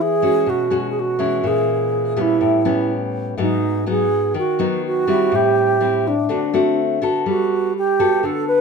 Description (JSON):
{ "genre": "bossa nova", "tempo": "124 BPM", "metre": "4/4", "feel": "straight", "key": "unclear", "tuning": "A4 = 440 Hz", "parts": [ { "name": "reedy wooden-headed alto flute", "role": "melody", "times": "0.0-8.6 s", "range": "D4 to B4", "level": "-18 LUFS", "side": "right 4 dB", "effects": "none" }, { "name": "nylon-string guitar", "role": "accompaniment", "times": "0.0-8.6 s", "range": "G#2 to A4", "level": "-20 LUFS", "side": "left 3 dB", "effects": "none" } ], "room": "moderate small room reverb, RT60 0.5 s", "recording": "band playing live in one room", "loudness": "-16 LUFS", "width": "side -5 dB against mid", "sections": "0.0-8.6 A section", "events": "none", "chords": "0.0 E69; 1.4 A#m7b5; 2.4 A9; 3.4 G#m7; 5.3 Am7; 6.3 D7; 7.3 Gmaj9" }